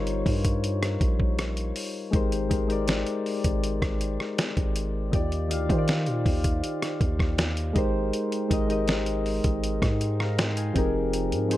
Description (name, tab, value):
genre	contemporary R&B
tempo	80 BPM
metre	4/4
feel	straight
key	unclear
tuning	A4 = 442 Hz
part	soft electric-piano-like synth keys	accompaniment	0.0-11.6 s	Eb3 to C6	-28 LUFS	left 2 dB	chorus
part	long sustained 808-style bass	bass	0.0-11.6 s	F1 to Eb3	-28 LUFS	equal	none
part	dusty soul sampler-style drum kit	drums	0.1-11.6 s	hi-hat, kick drum, rim click, snare drum	-27 LUFS	equal	none
room	little or no reverb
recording	none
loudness	-24 LUFS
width	side -15 dB against mid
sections	0.0-11.6 A section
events	none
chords	0.0 Eb7/G; 2.1 Abmaj7; 5.1 Ebmaj9; 7.8 Abmaj7; 10.8 Fm11